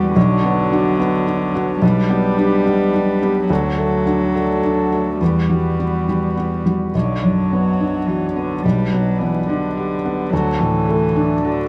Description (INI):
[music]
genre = neoclassical piano and strings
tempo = 107 BPM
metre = 3/4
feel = rubato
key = B minor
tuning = A4 = 442 Hz
[part]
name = clear cello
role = second line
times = 0.0-11.7 s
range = D3 to G3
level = -24 LUFS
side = equal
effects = none
[part]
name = felt-muted upright piano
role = accompaniment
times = 0.0-11.7 s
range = B1 to G4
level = -20 LUFS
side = equal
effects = none
[part]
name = hand-pumped harmonium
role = sustained chords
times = 0.0-11.7 s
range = F#3 to C#5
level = -27 LUFS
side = equal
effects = none
[sound]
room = moderate studio reverb, RT60 0.6 s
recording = vinyl crackle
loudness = -18 LUFS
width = mono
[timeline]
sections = 0.0-6.9 A section; 6.9-11.7 B section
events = none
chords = 0.2 Bmadd9; 1.8 G/B; 3.5 D; 5.2 Emadd9; 6.9 Bmadd9; 8.6 G/B; 10.3 D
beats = | 0.16 0.71 1.27 | 1.82 2.38 2.94 | 3.50 4.06 4.63 | 5.20 5.78 6.36 | 6.94 7.51 8.08 | 8.64 9.20 9.76 | 10.32 10.88 11.45